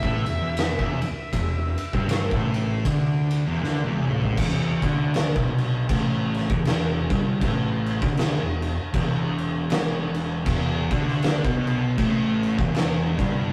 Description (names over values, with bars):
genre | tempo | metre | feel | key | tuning
stoner and doom metal | 79 BPM | 4/4 | swing 59% on 8ths | E minor | A4 = 440 Hz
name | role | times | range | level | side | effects
octave-fuzz lead guitar | melody | 0.0-3.6 s | E5 | -35 LUFS | equal | wah, distortion
thick fuzz guitar | riff | 0.0-13.5 s | E2 to D3 | -28 LUFS | equal | distortion
thick fuzz guitar | riff | 0.0-4.4, 10.5-13.5 s | E2 to D3 | -32 LUFS | equal | distortion
fuzz picked electric bass | bass | 0.0-13.5 s | E1 to D2 | -34 LUFS | equal | overdrive
oversized low-tuned drum kit | drums | 0.0-13.3 s | crash cymbal, kick drum, ride cymbal, snare drum, toms | -28 LUFS | equal | none
room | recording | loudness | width
moderate studio reverb, RT60 0.6 s | rough rehearsal-room recording, warm saturation | -24 LUFS | mono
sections
0.0-4.4 A section; 4.4-13.5 B section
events
drum fill 3.6-4.4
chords
0.0 Em